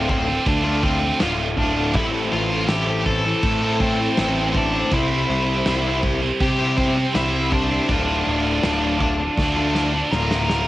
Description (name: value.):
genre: quiet-loud alternative rock.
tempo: 81 BPM.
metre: 4/4.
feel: straight.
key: D minor.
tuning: A4 = 440 Hz.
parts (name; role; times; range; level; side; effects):
octave-fuzz lead guitar; melody; 0.0-10.7 s; C4 to A5; -24 LUFS; equal; distortion.
string machine, cellos; sustained chords; 0.0-10.7 s; G4 to D6; -31 LUFS; equal; ensemble chorus.
fuzz guitar; riff; 0.0-10.7 s; D2 to C5; -27 LUFS; left 5 dB; distortion.
scooped high-gain guitar; riff; 0.0-10.7 s; D2 to C5; -25 LUFS; right 5 dB; distortion.
fuzz picked electric bass; bass; 0.0-10.7 s; D1 to C3; -24 LUFS; equal; overdrive.
loose indie drum kit; drums; 0.1-10.7 s; crash cymbal, kick drum, snare drum; -26 LUFS; equal; cassette tape.
room: light reverb.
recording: home recording on cassette.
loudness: -18 LUFS.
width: side -16 dB against mid.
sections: 0.0-10.7 A section.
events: drum fill 9.4-10.7.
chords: 0.0 Dm; 1.9 Am; 4.9 C; 7.9 Dm.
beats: 0.47 1.21 | 1.95 2.69 3.43 4.18 | 4.92 5.66 6.40 7.14 | 7.89 8.63 9.37 10.12.